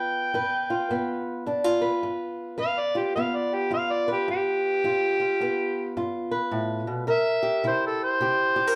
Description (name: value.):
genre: acoustic country blues, solo or duo.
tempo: 107 BPM.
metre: 4/4.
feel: swing 62% on 8ths.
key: G mixolydian.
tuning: A4 = 439 Hz.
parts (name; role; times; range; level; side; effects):
overdriven harmonica; melody; 0.0-8.8 s; G4 to G5; -27 LUFS; equal; none.
fingerpicked old ladder-braced acoustic guitar; accompaniment; 0.0-8.8 s; G2 to B4; -30 LUFS; equal; none.
room: moderate large studio reverb, RT60 1.1 s.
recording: band playing live in one room.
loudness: -26 LUFS.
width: mono.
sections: 0.0-8.8 A section.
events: none.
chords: 0.0 G7; 7.1 C7.